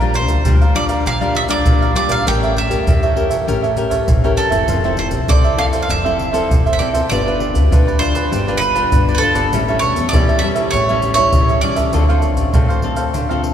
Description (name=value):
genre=samba and choro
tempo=99 BPM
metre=4/4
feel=straight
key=unclear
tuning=A4 = 440 Hz
part: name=bowl-back mandolin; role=melody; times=0.0-13.5 s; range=A4 to G5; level=-19 LUFS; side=right 2 dB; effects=none
part: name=cavaquinho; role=accompaniment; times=0.0-13.5 s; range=D4 to F5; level=-22 LUFS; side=right 4 dB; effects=none
part: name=nylon-string guitar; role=accompaniment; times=0.0-13.5 s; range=A2 to B4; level=-21 LUFS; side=left 3 dB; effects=none
part: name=upright bass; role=bass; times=0.0-13.5 s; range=F1 to E2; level=-19 LUFS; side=equal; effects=none
part: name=maracas, pandeiro and surdo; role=percussion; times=0.0-13.5 s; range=none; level=-18 LUFS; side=equal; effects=none
room=wet cathedral reverb, RT60 5.9 s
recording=recorded in a church or concert hall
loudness=-13 LUFS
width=side -9 dB against mid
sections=0.0-13.5 A section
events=none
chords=0.0 Gm7/Bb; 2.3 A7b9; 4.7 Fmaj7; 7.1 G7; 9.5 A7; 11.9 Dm7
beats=0.46 1.06 1.66 | 2.27 2.87 3.48 4.08 | 4.68 5.29 5.89 6.50 | 7.10 7.71 8.31 8.92 | 9.52 10.13 10.73 11.34 | 11.94 12.54 13.15